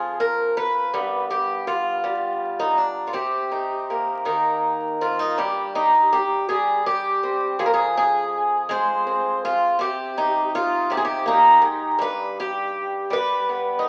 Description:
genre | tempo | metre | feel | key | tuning
folk, solo fingerstyle acoustic guitar | 54 BPM (dotted quarters) | 6/8 | straight | unclear | A4 = 439 Hz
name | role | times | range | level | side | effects
picked twelve-string acoustic guitar | solo | 0.0-13.9 s | F2 to C5 | -22 LUFS | equal | none
room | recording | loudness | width
moderate large studio reverb, RT60 1.2 s | very old 78 rpm record, vinyl crackle | -22 LUFS | mono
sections
0.0-5.4 A section; 5.4-13.9 B section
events
none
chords
0.0 N.C.; 0.9 G; 3.1 Cm7; 5.4 Gsus4; 7.6 Fm; 9.8 Cm; 12.0 G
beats
| 0.94 2.04 | 3.14 4.25 | 5.37 6.49 | 7.59 8.69 | 9.79 10.90 | 12.01 13.12

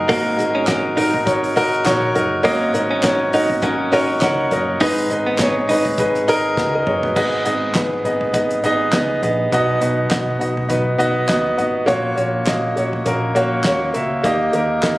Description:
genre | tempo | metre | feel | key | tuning
piano-driven pop | 102 BPM | 4/4 | swing 56% on 16ths | G# minor | A4 = 441 Hz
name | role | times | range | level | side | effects
clear grand piano | accompaniment | 0.0-15.0 s | G#2 to F#5 | -17 LUFS | equal | none
percussive tonewheel organ | sustained chords | 0.0-7.1 s | F#3 to A#4 | -31 LUFS | right 2 dB | none
hollow-body short-scale picked electric bass | bass | 0.0-15.0 s | F#1 to D#2 | -27 LUFS | equal | none
direct-recorded clean electric guitar | riff | 0.1-5.8 s | A#3 to D#4 | -22 LUFS | right 2 dB | none
damped 70s drum kit | drums | 0.1-15.0 s | crash cymbal, handclaps, hi-hat, kick drum, snare drum, toms | -24 LUFS | equal | none
room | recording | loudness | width
light reverb, small room ambience | recorded on a phone in the room, club reverb | -16 LUFS | side -18 dB against mid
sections
0.0-7.2 A section; 7.2-15.0 B section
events
drum fill 6.6-7.2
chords
0.0 F#6/G#; 4.8 G#m; 9.5 B; 11.9 F#/A#; 14.2 D#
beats
| 0.09 0.68 1.27 1.86 | 2.45 3.04 3.63 4.22 | 4.81 5.39 5.98 6.57 | 7.16 7.75 8.34 8.93 | 9.52 10.11 10.70 11.29 | 11.88 12.47 13.06 13.65 | 14.24 14.83

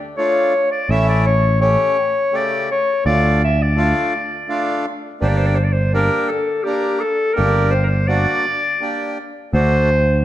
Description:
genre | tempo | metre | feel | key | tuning
klezmer | 83 BPM | 3/4 | straight | D harmonic minor, G harmonic minor from 5.2 s | A4 = 440 Hz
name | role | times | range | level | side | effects
bright clarinet | melody | 0.2-10.2 s | G4 to E5 | -18 LUFS | left 1 dB | none
accordion | accompaniment | 0.2-9.9 s | C#3 to Bb4 | -22 LUFS | equal | none
picked electric bass | bass | 0.9-10.2 s | G1 to D2 | -17 LUFS | equal | none
room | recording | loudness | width
wet recital hall reverb, RT60 1.4 s | dark, warm production | -15 LUFS | side -13 dB against mid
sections
0.0-5.2 A section; 5.2-10.2 B section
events
none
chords
0.0 Dm; 0.9 A; 3.1 Dm; 5.2 Gm; 9.5 D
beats
0.18 | 0.90 1.62 2.34 | 3.06 3.78 4.50 | 5.22 5.94 6.67 | 7.39 8.11 8.83 | 9.55

